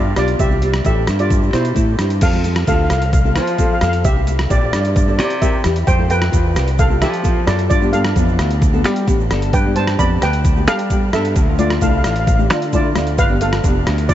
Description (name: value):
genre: calypso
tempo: 131 BPM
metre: 4/4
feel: straight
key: C major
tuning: A4 = 440 Hz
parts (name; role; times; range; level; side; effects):
- steel pan; melody; 0.0-14.1 s; E4 to B5; -21 LUFS; equal; tape echo
- nylon-string guitar; accompaniment; 0.0-14.0 s; E3 to C5; -22 LUFS; left 2 dB; lush chorus
- modern bright fingered electric bass; bass; 0.0-14.1 s; F1 to G3; -18 LUFS; equal; none
- trip hop sampler-style drum kit; drums; 0.2-14.1 s; crash cymbal, hi-hat, kick drum, rim click; -18 LUFS; equal; none
- egg shaker; percussion; 0.2-14.1 s; none; -38 LUFS; right 15 dB; none
room: light reverb, small room ambience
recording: nothing above 7.8 kHz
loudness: -13 LUFS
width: side -12 dB against mid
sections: 0.0-2.2 A section; 2.2-14.1 A section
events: none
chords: 0.4 C; 2.2 F; 4.0 C7; 5.9 Fmaj7; 7.7 G7; 11.4 Dm; 13.2 G7